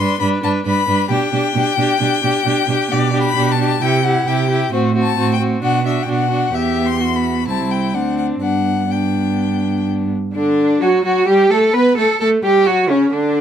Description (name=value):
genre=quick classical-period movement for string quartet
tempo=131 BPM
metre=4/4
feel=rubato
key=G major, D major from 10.3 s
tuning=A4 = 440 Hz
part: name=clear violin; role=melody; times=0.0-13.4 s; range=C#4 to C6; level=-21 LUFS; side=left 8 dB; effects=none
part: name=warm violin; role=second line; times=0.0-13.4 s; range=C#4 to B4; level=-20 LUFS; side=left 4 dB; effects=none
part: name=rich viola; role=accompaniment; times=0.0-13.4 s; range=C#3 to E4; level=-20 LUFS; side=right 3 dB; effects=none
part: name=rich cello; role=bass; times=0.0-13.4 s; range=C2 to B4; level=-19 LUFS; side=right 5 dB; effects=none
room=light reverb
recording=none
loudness=-14 LUFS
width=side -9 dB against mid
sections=0.0-10.3 A section; 10.3-13.4 B section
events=none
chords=0.0 G; 1.1 G/B; 3.8 C; 4.7 F#dim/A; 5.6 Bm; 6.5 Em; 7.5 C; 7.9 D7; 8.4 G; 10.3 D; 11.3 Gadd9; 12.2 D